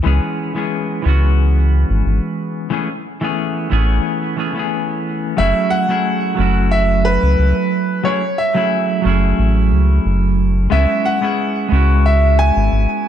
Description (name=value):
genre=sunset chillout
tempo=90 BPM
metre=4/4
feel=straight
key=unclear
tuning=A4 = 440 Hz
part: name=semi-hollow electric guitar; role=accompaniment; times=0.0-13.1 s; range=E3 to G#4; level=-18 LUFS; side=moving between left 5 dB and right 5 dB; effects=auto-pan, digital delay
part: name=round analog bass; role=bass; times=0.1-12.9 s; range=F#1 to C#2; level=-14 LUFS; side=equal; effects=none
part: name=bright grand piano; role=melody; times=5.4-13.1 s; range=B4 to G#5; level=-18 LUFS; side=right 1 dB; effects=digital delay
room=light reverb, studio reverb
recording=dark, warm production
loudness=-14 LUFS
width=side -10 dB against mid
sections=0.0-5.4 A section; 5.4-13.1 B section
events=break 4.1-5.4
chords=0.0 C#m7; 2.7 Amaj7; 5.4 F#m9; 10.7 C#m7